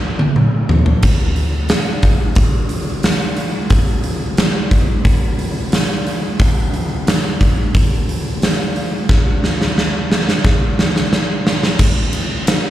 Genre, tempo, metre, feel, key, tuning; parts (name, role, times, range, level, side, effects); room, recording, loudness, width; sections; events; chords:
rock; 89 BPM; 4/4; straight
huge arena drum kit; drums; 0.2-12.6 s; crash cymbal, hi-hat, kick drum, ride cymbal, snare drum, toms; -14 LUFS; equal
moderate club reverb, RT60 0.6 s; live gig heard through the venue's PA, recital hall reverb; -14 LUFS; side -13 dB against mid
0.0-11.8 A section
drum fill 0.0-1.0, 9.1-11.8